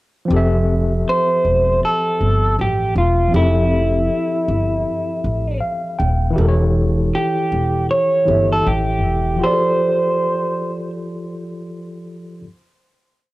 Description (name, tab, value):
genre	lo-fi hip hop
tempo	79 BPM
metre	4/4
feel	swing 60% on 16ths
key	F major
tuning	A4 = 435 Hz
part	tine electric piano	accompaniment	0.3-12.5 s	E3 to G5	-22 LUFS	left 1 dB	overdrive, fast stereo tremolo, cassette tape
part	upright bass	bass	0.3-9.4 s	Eb1 to A1	-18 LUFS	equal	none
part	electric guitar through a small old amp	melody	1.1-10.9 s	E4 to C#5	-18 LUFS	right 1 dB	cassette tape
room	light reverb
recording	home recording on cassette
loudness	-15 LUFS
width	side -18 dB against mid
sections	0.3-12.4 A section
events	tine electric piano fill 5.2-6.4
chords	0.3 Fmaj7; 6.4 A7/E; 9.4 F6